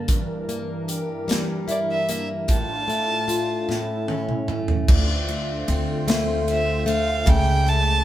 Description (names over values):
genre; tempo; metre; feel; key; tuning
six-eight pop ballad; 50 BPM (dotted quarters); 6/8; straight; D minor; A4 = 440 Hz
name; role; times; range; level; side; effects
picked plugged-in acoustic archtop guitar; accompaniment; 0.0-8.0 s; G2 to G4; -26 LUFS; left 2 dB; none
warm analog pad; sustained chords; 0.0-8.0 s; G2 to E5; -30 LUFS; equal; chorus
modern studio drum kit; drums; 0.1-7.9 s; crash cymbal, hi-hat, kick drum, ride cymbal, snare drum, toms; -23 LUFS; equal; none
dark violin; melody; 1.7-8.0 s; D5 to A5; -25 LUFS; right 2 dB; none
upright bass; bass; 4.9-8.0 s; C#2 to D2; -23 LUFS; equal; none
room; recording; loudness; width
moderate stone room reverb, RT60 1.2 s; band playing live in one room; -20 LUFS; side -13 dB against mid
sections
0.0-4.9 A section; 4.9-8.0 B section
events
drum fill 3.7-4.9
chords
0.1 Em7b5/G; 2.5 Dm/A; 3.7 A; 4.9 Dm7; 7.3 A7/C#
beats
| 0.09 1.29 | 2.49 3.68 | 4.88 6.08 | 7.27